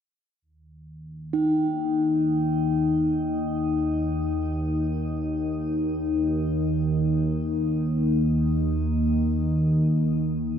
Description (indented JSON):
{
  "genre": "world meditative, free-time meditation music",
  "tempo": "free time",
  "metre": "none",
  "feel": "none",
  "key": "unclear",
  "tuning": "A4 = 440 Hz",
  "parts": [
    { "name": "deep dark ambient pad", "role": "drone", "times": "0.9-10.6 s", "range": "Eb2 to Eb3", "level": "-24 LUFS", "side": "equal", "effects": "chorus, built-in reverb" },
    { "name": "bronze singing bowl", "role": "texture", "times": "1.3-9.4 s", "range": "Eb4", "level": "-26 LUFS", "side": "left 2 dB", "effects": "shimmer reverb" }
  ],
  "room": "wet cathedral reverb, RT60 5.2 s",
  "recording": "in a vast, echoing space",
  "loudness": "-22 LUFS",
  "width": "side -8 dB against mid",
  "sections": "0.4-10.6 A section",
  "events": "none",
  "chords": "none"
}